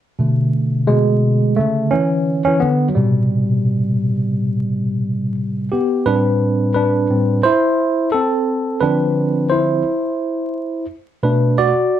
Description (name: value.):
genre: hip hop.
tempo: 87 BPM.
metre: 4/4.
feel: swing 58% on 16ths.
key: A minor.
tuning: A4 = 440 Hz.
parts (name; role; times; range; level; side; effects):
bright tine electric piano; solo; 0.2-12.0 s; A2 to D5; -15 LUFS; equal; slow stereo tremolo, slapback echo.
room: moderate studio reverb, RT60 0.5 s.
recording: dark, warm production, vinyl crackle.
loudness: -15 LUFS.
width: side -11 dB against mid.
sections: 0.0-6.1 A section; 6.1-12.0 B section.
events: tine electric piano solo 0.0-6.1, 6.1-12.0.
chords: 0.2 Bm11; 3.0 Am9; 6.1 Am11; 8.5 Dm9; 11.2 Bm7.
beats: | 0.55 1.24 1.93 2.62 | 3.31 4.00 4.69 5.38 | 6.07 6.76 7.45 8.14 | 8.82 9.52 10.20 10.89 | 11.58.